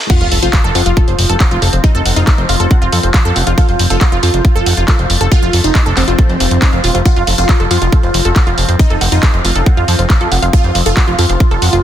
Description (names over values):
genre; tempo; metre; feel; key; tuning
psychedelic trance; 138 BPM; 4/4; straight; F major; A4 = 442 Hz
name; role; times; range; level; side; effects
overtone-sweeping drone; sustained chords; 0.0-11.8 s; F3 to F4; -24 LUFS; left 2 dB; chorus, built-in reverb, sidechain pumping
supersaw stab; melody; 0.1-11.8 s; C4 to F4; -18 LUFS; right 1 dB; phaser, sidechain pumping, dub echo
wide unison pluck; riff; 0.1-11.8 s; Eb4 to Gb5; -20 LUFS; right 1 dB; auto-pan, sidechain pumping, dub echo
electronic kick drum; drums; 0.1-11.5 s; none; -10 LUFS; equal; none
techno drum kit; drums; 0.1-11.8 s; crash cymbal, handclaps, hi-hat; -18 LUFS; equal; none
sub drop; sound effects; 0.1-1.8 s; none; -22 LUFS; equal; none
fat analog bass; bass; 0.2-11.8 s; Eb1 to F2; -14 LUFS; equal; none
room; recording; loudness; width
digital ambience; dense, heavily limited modern master, high-pass filter; -9 LUFS; side -11 dB against mid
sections
0.1-11.8 A section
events
drop 0.1-11.8; impact 0.1-1.8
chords
0.1 F5